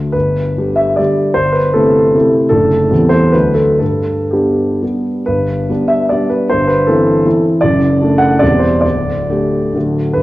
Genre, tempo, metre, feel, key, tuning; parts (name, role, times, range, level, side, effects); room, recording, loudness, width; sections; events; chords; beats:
classical, romantic triple-time dance for piano with dotted rhythms; 115-165 BPM; 3/4; rubato; G major; A4 = 439 Hz
warm concert grand piano; solo; 0.0-10.2 s; D1 to F#5; -11 LUFS; equal
wet recital hall reverb, RT60 1.6 s; worn, warbling old tape, cassette tape, warbly pitch drift; -11 LUFS; side -17 dB against mid
0.0-5.3 A section; 5.3-10.2 A section
0.2 G; 1.4 Am7/G; 2.5 D/F#; 2.9 C/E; 3.3 D; 3.8 G; 6.5 Am7/G; 7.6 D/F#; 8.4 C/E; 8.8 Dsus4; 9.8 D
| 0.15 0.58 0.99 | 1.38 1.76 2.15 | 2.51 2.91 3.34 | 3.81 4.32 4.82 | 5.28 5.70 6.12 | 6.51 6.88 7.26 | 7.64 8.02 8.42 | 8.84 9.30 9.76 | 10.18